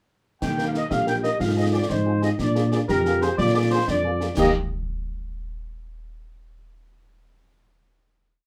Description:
military-style march for wind band; 121 BPM (dotted quarters); 6/8; straight; Eb major; A4 = 440 Hz
dark trumpet section; melody; 0.4-4.5 s; Bb4 to G5; -28 LUFS; equal
mellow tuba; bass; 0.4-4.5 s; Bb1 to Bb2; -27 LUFS; equal
concert snare drum, clash cymbals and concert bass drum; drums; 0.4-4.6 s; -32 LUFS; equal
mellow French horn section; accompaniment; 0.6-4.5 s; Bb3 to Bb4; -29 LUFS; equal
mellow euphonium; second line; 0.9-4.0 s; D4 to G4; -28 LUFS; equal
wet studio reverb, RT60 0.5 s; heard from further back in the room; -23 LUFS; mono
0.4-4.4 A section; 4.4-5.4 final chord
0.4 Eb; 1.4 Fm/Ab; 2.4 Bb7; 4.4 Eb

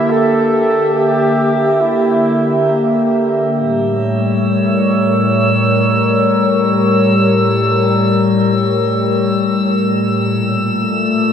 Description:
ambient; free time; A4 = 443 Hz
mellow flugelhorn; melody; 0.0-3.1 s; E4 to A4; -18 LUFS; right 1 dB; shimmer reverb, diffuse ambient delay
warbly tape-like pad; sustained chords; 0.0-11.3 s; A2 to E5; -13 LUFS; left 1 dB; chorus, built-in reverb, shimmer reverb
drifting glass-harmonics texture; texture; 4.0-11.3 s; E6; -20 LUFS; equal; chorus, built-in reverb, shimmer reverb
wet plate reverb, RT60 2.4 s; dreamy mix soaked in reverb; -12 LUFS; side -8 dB against mid
0.0-3.5 A section; 3.5-11.3 B section
0.0 C7/D (rootless); 3.5 A7b9; 10.3 Bbmaj9

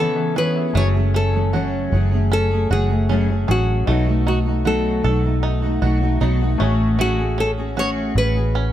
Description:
acoustic pop; 77 BPM; 4/4; straight; F# minor; A4 = 440 Hz
nylon-string guitar; melody; 0.0-8.7 s; F#4 to C#5; -24 LUFS; equal
clear upright piano; accompaniment; 0.0-8.7 s; A3 to G#5; -32 LUFS; left 7 dB
fingerpicked steel-string acoustic guitar; accompaniment; 0.0-8.7 s; F#2 to G#4; -22 LUFS; equal; double-tracked left and right
bluegrass banjo; arpeggios; 0.0-8.7 s; A3 to A4; -30 LUFS; right 7 dB; digital delay
vintage muted fingered electric bass; bass; 0.8-8.7 s; F#1 to B1; -19 LUFS; equal
small room ambience; -16 LUFS; side -12 dB against mid
0.8-8.7 A section
break 0.0-0.8
0.0 C#m7; 0.8 F#madd9; 3.9 B7; 6.6 F#madd9/A

